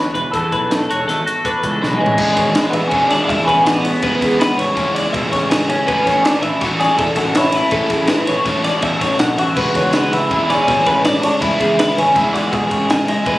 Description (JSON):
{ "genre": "math rock and midwest emo", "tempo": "162 BPM", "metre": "5/4", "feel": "straight", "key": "unclear", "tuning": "A4 = 440 Hz", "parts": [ { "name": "electric guitar through a small old amp", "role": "melody", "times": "0.0-13.4 s", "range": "G#3 to B4", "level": "-18 LUFS", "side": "equal", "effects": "lush chorus, digital delay" }, { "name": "twangy electric guitar", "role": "accompaniment", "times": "0.0-2.2 s", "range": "E2 to F#4", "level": "-22 LUFS", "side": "right 1 dB", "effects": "none" }, { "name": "twelve-string electric guitar", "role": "arpeggios", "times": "0.0-13.4 s", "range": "G#4 to G#5", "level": "-21 LUFS", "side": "left 1 dB", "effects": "wide subtle chorus" }, { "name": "fuzz picked electric bass", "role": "bass", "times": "0.0-13.3 s", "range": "E1 to B2", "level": "-22 LUFS", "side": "equal", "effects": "overdrive" }, { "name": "compact cocktail drum kit", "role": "drums", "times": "0.2-13.3 s", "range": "crash cymbal, hi-hat, kick drum, ride cymbal, snare drum, toms", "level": "-20 LUFS", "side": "equal", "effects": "none" }, { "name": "crunchy overdriven guitar", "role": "riff", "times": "2.2-13.4 s", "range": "C#3 to A4", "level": "-21 LUFS", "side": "equal", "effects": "none" } ], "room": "light reverb", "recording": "recorded on a phone in the room, studio reverb", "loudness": "-13 LUFS", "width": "side -17 dB against mid", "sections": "0.0-2.2 A section; 2.2-13.4 B section", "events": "drum fill 1.8-2.2", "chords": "0.0 E9sus4; 2.2 E7; 4.0 C#m7/A; 5.9 F#m7/A; 9.6 C#m7/A" }